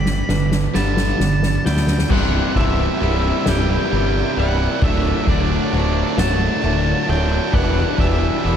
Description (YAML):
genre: post-rock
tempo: 44 BPM (dotted quarters)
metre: 6/8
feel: straight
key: C lydian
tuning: A4 = 439 Hz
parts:
  - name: octave-fuzz lead guitar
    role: melody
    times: 0.0-8.6 s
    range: D5 to B5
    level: -26 LUFS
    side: equal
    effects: distortion, ping-pong delay
  - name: pedal steel guitar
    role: sustained chords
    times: 0.0-8.6 s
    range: B2 to D5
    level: -32 LUFS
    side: left 2 dB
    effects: none
  - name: twangy electric guitar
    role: arpeggios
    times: 0.0-8.6 s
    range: C2 to G4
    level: -27 LUFS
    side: left 4 dB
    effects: lush chorus, ping-pong delay
  - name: distorted electric guitar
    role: riff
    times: 0.0-8.6 s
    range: C2 to E4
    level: -23 LUFS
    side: right 10 dB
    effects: overdrive
  - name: raw garage guitar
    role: riff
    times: 0.0-8.6 s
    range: C2 to E4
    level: -26 LUFS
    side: left 10 dB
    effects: overdrive
  - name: fuzz fingered electric bass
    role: bass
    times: 0.0-8.6 s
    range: C1 to D2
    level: -20 LUFS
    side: equal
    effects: overdrive
  - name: soft-mallet drum kit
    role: drums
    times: 0.1-8.6 s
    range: crash cymbal, kick drum, ride cymbal, snare drum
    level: -22 LUFS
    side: equal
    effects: none
  - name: vibraphone with medium hard mallets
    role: arpeggios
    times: 0.3-8.4 s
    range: B4 to C6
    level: -33 LUFS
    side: right 2 dB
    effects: ping-pong delay
room: light reverb, small room ambience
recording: none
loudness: -16 LUFS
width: side -8 dB against mid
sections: 0.0-2.1 A section; 2.1-8.6 B section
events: build-up 0.0-2.1; drum fill 0.0-2.1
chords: 0.0 Gadd9; 2.1 Cmaj7; 4.8 D7; 7.5 Em7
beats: 0.75 | 2.11 3.46 | 4.82 6.18 | 7.53